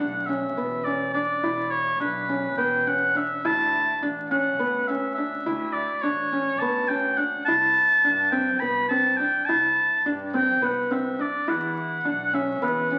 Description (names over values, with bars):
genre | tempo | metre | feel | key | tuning
contemporary instrumental, chamber music in an uneven meter | 209 BPM (eighths) | 7/8 | straight | unclear | A4 = 437 Hz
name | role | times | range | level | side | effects
warm oboe | melody | 0.0-13.0 s | B4 to B5 | -25 LUFS | equal | none
felt-muted upright piano | arpeggios | 0.0-13.0 s | B3 to E4 | -29 LUFS | equal | none
clear double bass | bass | 0.0-13.0 s | E1 to G2 | -41 LUFS | equal | none
room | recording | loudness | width
wet recital hall reverb, RT60 1.4 s | very old 78 rpm record, vinyl crackle | -24 LUFS | mono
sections
0.0-13.0 A section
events
none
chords
0.0 E5; 3.4 Dmaj9; 7.5 Cmaj7; 11.5 Bmadd9